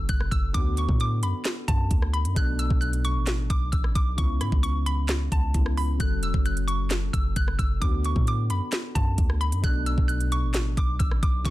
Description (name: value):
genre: hip hop, trap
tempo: 132 BPM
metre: 4/4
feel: half-time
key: unclear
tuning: A4 = 443 Hz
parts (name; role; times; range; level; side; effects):
- hollow square pluck; melody; 0.0-11.5 s; A5 to F#6; -32 LUFS; equal; chorus, ping-pong delay
- dark concert grand piano; accompaniment; 0.0-11.5 s; B2 to A4; -34 LUFS; left 1 dB; none
- hard-hitting 808-style bass; bass; 0.0-11.5 s; E1 to A2; -26 LUFS; equal; none
- trap drum kit; drums; 0.1-11.5 s; handclaps, hi-hat, kick drum, rim click, snare drum; -25 LUFS; equal; none
room: digital ambience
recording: dense, heavily limited modern master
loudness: -22 LUFS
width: side -17 dB against mid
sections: 0.0-11.5 A section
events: none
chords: 0.0 F#m; 0.5 D6; 2.4 Bm7; 4.2 C#m7; 6.0 F#m; 7.8 D6; 9.6 Bm7